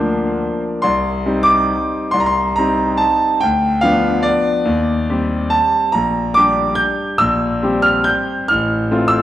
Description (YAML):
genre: classical, piano waltz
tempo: 140 BPM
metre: 3/4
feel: rubato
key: unclear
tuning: A4 = 441 Hz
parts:
  - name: bright concert grand piano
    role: solo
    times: 0.0-9.2 s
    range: A1 to G6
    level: -14 LUFS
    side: equal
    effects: none
room: wet concert hall reverb, RT60 1.9 s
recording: worn, warbling old tape, cassette tape, warbly pitch drift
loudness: -14 LUFS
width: side -13 dB against mid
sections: 0.0-9.2 A section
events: none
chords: 0.0 Bb/D; 0.8 Cm; 3.4 Bdim/D; 4.7 Cm/Eb; 5.9 Gm/Bb; 7.2 C7/Bb; 8.5 F/A